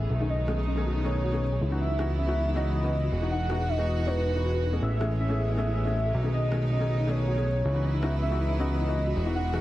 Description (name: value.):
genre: future bass.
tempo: 159 BPM.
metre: 4/4.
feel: half-time.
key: unclear.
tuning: A4 = 440 Hz.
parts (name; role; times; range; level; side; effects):
warm velvety synth lead; melody; 0.0-9.6 s; B4 to F#5; -33 LUFS; equal; chorus, tape echo.
bright studio string section; sustained chords; 0.0-9.6 s; B2 to F#4; -38 LUFS; right 2 dB; low-pass filter.
soft round pluck; arpeggios; 0.0-9.6 s; C#4 to D#5; -37 LUFS; left 2 dB; ensemble chorus, tape echo.
fat analog bass; bass; 0.0-9.6 s; E1 to C#2; -27 LUFS; equal; none.
felt-muted upright piano; accompaniment; 0.2-9.6 s; D#3 to G#4; -33 LUFS; left 2 dB; none.
electronic rim click; drums; 0.5-9.6 s; none; -41 LUFS; equal; overdrive.
room: light reverb.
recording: heavily compressed radio sound, multiband compression.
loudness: -25 LUFS.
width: side -15 dB against mid.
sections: 0.0-9.6 A section.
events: filter sweep on synth arpeggio sound 0.0-9.6.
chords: 0.1 B13; 1.6 C#m11; 3.1 Emaj9; 4.8 Amaj9; 6.1 B13; 7.7 C#m11.